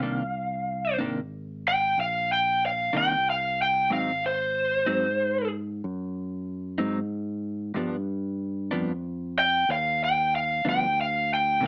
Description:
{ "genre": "blues", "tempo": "62 BPM (dotted quarters)", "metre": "12/8", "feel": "straight", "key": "unclear", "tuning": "A4 = 440 Hz", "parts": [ { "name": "lead guitar through a small cranked amp", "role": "melody", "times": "0.0-11.6 s", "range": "C5 to G5", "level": "-26 LUFS", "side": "equal", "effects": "overdrive" }, { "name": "clean electric guitar", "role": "accompaniment", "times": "0.0-11.7 s", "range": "G2 to Eb4", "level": "-31 LUFS", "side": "equal", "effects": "harmonic tremolo" }, { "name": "fingered electric bass", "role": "bass", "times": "0.0-11.7 s", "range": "Ab1 to Ab2", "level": "-36 LUFS", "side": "equal", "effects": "none" } ], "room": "moderate club reverb, RT60 0.7 s", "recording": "small speaker sound", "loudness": "-27 LUFS", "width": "mono", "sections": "0.0-11.7 A section", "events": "none", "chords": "0.0 Cm9; 3.9 Ab7; 7.8 G7", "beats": "| 0.03 1.00 1.97 2.94 | 3.91 4.87 5.84 6.80 | 7.76 8.73 9.69 10.65 | 11.62" }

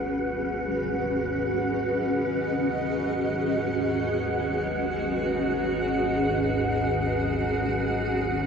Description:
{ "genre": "dark ambient drone", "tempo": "free time", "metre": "none", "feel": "none", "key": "unclear", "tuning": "A4 = 439 Hz", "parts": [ { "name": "granular cloud pad", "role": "sustained chords", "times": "0.0-8.5 s", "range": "C#4 to D#5", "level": "-25 LUFS", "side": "equal", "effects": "built-in reverb, shimmer reverb" }, { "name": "organ-like drone", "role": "drone", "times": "0.0-8.5 s", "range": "G#1 to D#2", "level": "-33 LUFS", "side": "equal", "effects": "ensemble chorus, built-in reverb" }, { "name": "wind-like tuned noise texture", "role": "texture", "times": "0.0-8.5 s", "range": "F#5", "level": "-31 LUFS", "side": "right 2 dB", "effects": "built-in reverb, shimmer reverb" } ], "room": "wet spring reverb, RT60 3.0 s", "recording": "none", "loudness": "-24 LUFS", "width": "side -6 dB against mid", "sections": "0.0-8.5 A section", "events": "fade-in on synth drone 0.0-8.5", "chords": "0.0 G#m; 7.2 A6/G# (rootless)", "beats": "free time" }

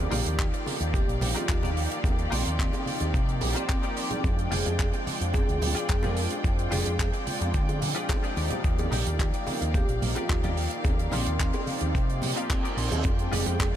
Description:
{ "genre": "nu-disco, nu disco", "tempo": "109 BPM", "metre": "4/4", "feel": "straight", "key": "unclear", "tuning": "A4 = 440 Hz", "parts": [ { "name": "warm analog pad", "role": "accompaniment", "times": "0.0-13.8 s", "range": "F3 to G5", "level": "-34 LUFS", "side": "equal", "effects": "wide subtle chorus, cassette tape, sidechain pumping, diffuse ambient delay" }, { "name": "rich studio string section", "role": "sustained chords", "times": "0.0-13.8 s", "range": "Eb3 to G5", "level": "-36 LUFS", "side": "left 2 dB", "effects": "sidechain pumping" }, { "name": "picked electric bass with an envelope filter", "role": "bass", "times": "0.0-13.7 s", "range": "F1 to D3", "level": "-29 LUFS", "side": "equal", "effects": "none" }, { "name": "vibraphone with medium hard mallets", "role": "melody", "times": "0.1-13.5 s", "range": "C4 to Bb4", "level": "-37 LUFS", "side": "equal", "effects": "diffuse ambient delay" }, { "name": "direct-recorded clean electric guitar", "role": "riff", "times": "0.1-13.8 s", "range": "Eb4 to F5", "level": "-39 LUFS", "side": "left 4 dB", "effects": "ensemble chorus, vintage 12-bit sampler grit, diffuse ambient delay" }, { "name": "damped 70s drum kit", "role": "drums", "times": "0.1-13.7 s", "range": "handclaps, hi-hat", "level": "-34 LUFS", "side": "right 3 dB", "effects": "none" }, { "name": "congas and bongos", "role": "percussion", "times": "0.1-13.6 s", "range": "none", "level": "-36 LUFS", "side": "right 2 dB", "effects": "none" }, { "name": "electronic kick drum", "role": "drums", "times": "0.4-13.7 s", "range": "none", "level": "-27 LUFS", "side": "equal", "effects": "none" }, { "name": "reverse cymbal", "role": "sound effects", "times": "12.4-13.0 s", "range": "none", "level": "-38 LUFS", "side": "right 6 dB", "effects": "none" } ], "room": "light reverb, small room ambience", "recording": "none", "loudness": "-24 LUFS", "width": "side -11 dB against mid", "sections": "0.0-13.8 A section", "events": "reverse cymbal 12.4-13.0", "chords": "0.0 Ebmaj9; 4.2 Fm69; 8.4 Ebmaj9; 13.0 Fm69", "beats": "0.39 0.94 1.49 | 2.04 2.59 3.14 3.69 | 4.24 4.79 5.34 5.89 | 6.44 6.99 7.54 8.09 | 8.64 9.19 9.74 10.29 | 10.85 11.40 11.95 12.50 | 13.05 13.60" }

